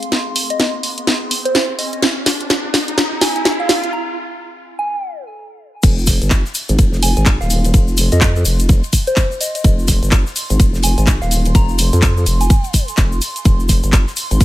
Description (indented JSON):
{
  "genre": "bass house",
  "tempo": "126 BPM",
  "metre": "4/4",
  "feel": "swing 60% on 16ths",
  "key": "F minor",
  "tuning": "A4 = 439 Hz",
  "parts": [
    { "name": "garage drum kit", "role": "drums", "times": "0.0-14.4 s", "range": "crash cymbal, handclaps, hi-hat, snare drum", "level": "-18 LUFS", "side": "equal", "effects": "studio ambience" },
    { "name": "riser", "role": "sound effects", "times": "0.0-3.9 s", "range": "none", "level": "-26 LUFS", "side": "right 1 dB", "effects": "none" },
    { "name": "warbly tape-like pad", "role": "texture", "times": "0.0-3.9, 7.6-14.4 s", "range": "C4 to C6", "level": "-31 LUFS", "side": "right 1 dB", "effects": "chorus, built-in reverb, sidechain pumping" },
    { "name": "soft synth bell", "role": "melody", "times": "0.5-12.7 s", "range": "C5 to Bb5", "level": "-24 LUFS", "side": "right 1 dB", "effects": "chorus, phaser, dub echo" },
    { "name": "vowel-sweep wobble bass", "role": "bass", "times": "5.8-14.4 s", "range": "Eb1 to F2", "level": "-15 LUFS", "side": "equal", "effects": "chorus, overdrive, sidechain pumping" },
    { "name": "damped 70s drum kit", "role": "drums", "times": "5.8-14.4 s", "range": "ride cymbal, snare drum", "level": "-32 LUFS", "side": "left 4 dB", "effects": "sidechain pumping on cymbals, high-pass filter on cymbals, studio ambience, high-pass filter on snare, high-pass filter on room" },
    { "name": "electronic kick drum", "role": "drums", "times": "5.8-14.4 s", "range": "none", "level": "-12 LUFS", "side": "equal", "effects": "studio ambience" },
    { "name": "egg shaker", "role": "percussion", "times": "5.8-14.4 s", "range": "none", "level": "-26 LUFS", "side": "left 4 dB", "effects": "none" }
  ],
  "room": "studio ambience",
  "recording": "none",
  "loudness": "-13 LUFS",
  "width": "side -15 dB against mid",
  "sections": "0.0-5.8 A section; 5.8-14.4 B section",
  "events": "build-up 0.0-5.8; drum fill 0.0-3.9; riser 0.0-3.9; break 3.9-5.8; drop 5.8-14.4",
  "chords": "0.0 Fm; 5.8 F5"
}